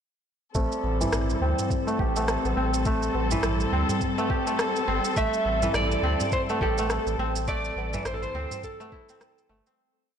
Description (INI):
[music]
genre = organic downtempo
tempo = 104 BPM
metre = 4/4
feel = swing 59% on 16ths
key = A minor pentatonic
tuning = A4 = 439 Hz
[part]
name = muted chamber string section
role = sustained chords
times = 0.5-9.7 s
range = G3 to A4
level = -31 LUFS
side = left 3 dB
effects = sidechain pumping
[part]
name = kora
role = arpeggios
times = 0.5-10.2 s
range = E3 to G4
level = -29 LUFS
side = right 1 dB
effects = low-pass filter, digital delay
[part]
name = warm sub bass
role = bass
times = 0.5-9.6 s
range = G1 to D2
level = -29 LUFS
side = equal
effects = tube saturation, sidechain pumping
[part]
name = electronic kick drum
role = drums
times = 0.6-9.1 s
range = none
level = -29 LUFS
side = equal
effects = none
[part]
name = electronic shaker and rim click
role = drums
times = 0.6-9.8 s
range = none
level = -33 LUFS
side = right 1 dB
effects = none
[part]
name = quartz singing bowl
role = texture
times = 0.6-9.8 s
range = C4 to C5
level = -38 LUFS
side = left 1 dB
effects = none
[part]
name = tabla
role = percussion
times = 0.8-9.8 s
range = none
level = -36 LUFS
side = right 2 dB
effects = none
[part]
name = electric slide guitar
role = melody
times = 5.2-9.5 s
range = A4 to E5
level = -29 LUFS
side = right 3 dB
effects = ping-pong delay
[sound]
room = moderate lush hall reverb, RT60 2.3 s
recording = blown-out, overdriven recording, overdrive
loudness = -23 LUFS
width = side -8 dB against mid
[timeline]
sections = 0.6-9.8 groove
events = filter sweep on kora 0.6-9.8; fade-out 6.7-9.8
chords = 0.6 Am7